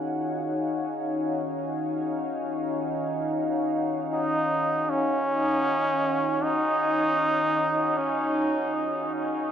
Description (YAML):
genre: ambient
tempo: free time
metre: none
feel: none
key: Eb minor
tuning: A4 = 440 Hz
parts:
  - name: deep dark ambient pad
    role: sustained chords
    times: 0.0-9.5 s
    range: Eb4 to Ab5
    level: -27 LUFS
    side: left 1 dB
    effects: chorus, built-in reverb
  - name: trombone with straight mute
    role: melody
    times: 4.1-8.7 s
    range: Db4 to Eb4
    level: -24 LUFS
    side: equal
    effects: dub echo
room: moderate echo chamber reverb, RT60 1.5 s, small room ambience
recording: dark, warm production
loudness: -24 LUFS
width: side -9 dB against mid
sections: 0.0-9.5 A section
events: none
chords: 0.0 Ebm11